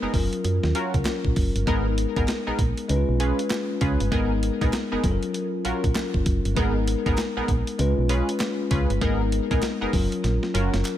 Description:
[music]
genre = R&B, new jack swing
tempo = 98 BPM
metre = 4/4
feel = swing 62% on 16ths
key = G# dorian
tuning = A4 = 440 Hz
[part]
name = bell-like tine electric piano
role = accompaniment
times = 0.0-11.0 s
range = F#3 to B4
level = -27 LUFS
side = left 4 dB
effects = phaser
[part]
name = funky polysynth comp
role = stabs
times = 0.0-10.7 s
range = B3 to B4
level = -30 LUFS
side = right 2 dB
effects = chorus, ping-pong delay
[part]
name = solid FM bass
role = bass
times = 0.0-10.8 s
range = F#1 to F#2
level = -25 LUFS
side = right 1 dB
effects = none
[part]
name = clean 12-bit digital drum machine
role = drums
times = 0.1-11.0 s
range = hi-hat, kick drum, snare drum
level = -27 LUFS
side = right 1 dB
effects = none
[part]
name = group handclap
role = percussion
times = 1.1-11.0 s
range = none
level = -41 LUFS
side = right 3 dB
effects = none
[sound]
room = light reverb, digital ambience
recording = none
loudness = -21 LUFS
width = side -12 dB against mid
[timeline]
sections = 0.0-11.0 A section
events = drum fill 10.2-11.0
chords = 0.1 F#maj7; 1.7 G#madd9; 2.9 C#7; 4.1 G#madd9; 5.0 F#maj7; 6.6 G#madd9; 7.8 C#7; 9.0 G#madd9; 9.9 F#maj7

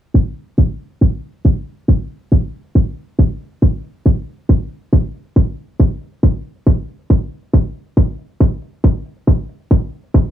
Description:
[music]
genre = psychedelic trance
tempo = 138 BPM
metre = 4/4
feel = straight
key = none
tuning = none
[part]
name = electronic hi-hat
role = drums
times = 0.1-10.3 s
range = none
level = -57 LUFS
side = right 1 dB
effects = low-pass filter on hats, small room reverb
[part]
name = electronic kick drum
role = drums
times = 0.1-10.2 s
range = none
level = -11 LUFS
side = equal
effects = small room reverb
[sound]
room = digital ambience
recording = low-pass filter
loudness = -15 LUFS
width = side -11 dB against mid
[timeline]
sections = 0.1-10.3 A section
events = filter sweep 0.1-10.3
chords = none

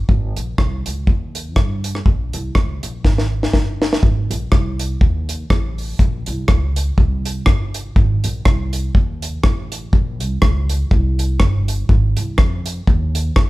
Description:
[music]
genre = ska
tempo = 122 BPM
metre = 4/4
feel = swing 57% on 8ths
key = Ab major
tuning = A4 = 441 Hz
[part]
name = upright bass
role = bass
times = 0.1-13.5 s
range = G1 to G2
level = -21 LUFS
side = equal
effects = none
[part]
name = deep reggae drum kit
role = drums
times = 0.1-13.5 s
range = hi-hat, kick drum, rim click, snare drum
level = -16 LUFS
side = equal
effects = none
[sound]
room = light reverb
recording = band playing live in one room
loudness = -15 LUFS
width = side -18 dB against mid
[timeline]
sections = 0.0-4.0 A section; 4.0-13.5 B section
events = drum fill 3.0-4.0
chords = none

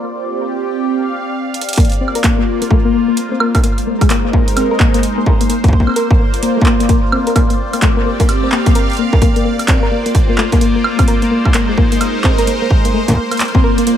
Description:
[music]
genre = IDM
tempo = 129 BPM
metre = 4/4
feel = swing 62% on 16ths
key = Bb major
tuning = A4 = 440 Hz
[part]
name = phased analog pad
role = sustained chords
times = 0.0-14.0 s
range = Ab3 to F5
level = -19 LUFS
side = equal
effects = phaser, chorus
[part]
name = booming analog drum machine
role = drums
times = 1.5-14.0 s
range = handclaps, hi-hat, woodblock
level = -21 LUFS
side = right 2 dB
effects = tape echo
[part]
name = soft round pluck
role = arpeggios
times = 1.8-14.0 s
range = Ab3 to Bb4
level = -17 LUFS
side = left 3 dB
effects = chorus, cassette tape, tape echo
[part]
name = electronic kick drum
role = drums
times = 1.8-13.6 s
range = none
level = -13 LUFS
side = equal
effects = distortion
[sound]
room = light reverb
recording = echo-heavy mix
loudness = -11 LUFS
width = side -10 dB against mid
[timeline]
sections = 0.0-1.8 A section; 1.8-14.0 B section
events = break 0.0-1.8; filter sweep on analog synth pad 0.0-1.8; drum fill 1.5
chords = 0.0 C9sus4; 1.8 Bb; 3.6 Ab; 5.5 Bb; 7.4 C9sus4; 11.1 Ab; 12.9 Bb

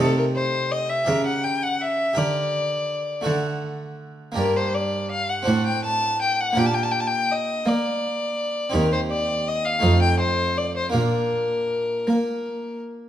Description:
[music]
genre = classical, baroque-style sonata movement with continuo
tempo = 55 BPM (dotted quarters)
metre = 6/8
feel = straight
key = G minor, Bb major from 8.7 s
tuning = A4 = 441 Hz
[part]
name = rich violin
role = melody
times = 0.0-12.8 s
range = A4 to A5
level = -23 LUFS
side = left 2 dB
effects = none
[part]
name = harpsichord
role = accompaniment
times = 0.0-13.1 s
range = Eb2 to A#4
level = -27 LUFS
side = right 2 dB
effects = none
[part]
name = rich cello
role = bass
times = 0.0-13.1 s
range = Eb2 to Bb3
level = -26 LUFS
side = right 2 dB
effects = none
[sound]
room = moderate recital hall reverb, RT60 1.4 s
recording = minimal, uncompressed stereo recording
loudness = -20 LUFS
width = side -11 dB against mid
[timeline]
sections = 0.0-13.1 A section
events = none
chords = 0.0 Adim/C; 1.1 C#dim7; 2.2 Gm/D; 3.3 D; 4.4 Gm; 5.5 D7/A; 6.6 Gm/Bb; 8.7 Cm/Eb; 9.8 F7; 10.9 Bb

